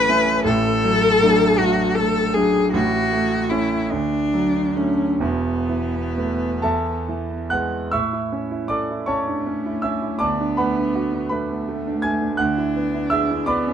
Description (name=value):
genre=classical, romantic duo for cello and grand piano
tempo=41-56 BPM (dotted quarters)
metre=6/8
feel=rubato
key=A major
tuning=A4 = 443 Hz
part: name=rich cello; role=melody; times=0.0-13.7 s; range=A3 to B4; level=-21 LUFS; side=left 2 dB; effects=none
part: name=clear concert grand piano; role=accompaniment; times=0.0-13.7 s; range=E1 to G#6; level=-21 LUFS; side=right 2 dB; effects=none
room=light reverb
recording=dark, warm production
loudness=-18 LUFS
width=side -8 dB against mid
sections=0.0-7.9 A section; 7.9-13.7 B section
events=none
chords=0.5 D/A; 2.7 A; 3.9 D; 5.2 Esus4; 6.6 E; 7.9 A; 10.2 D; 12.4 E7/D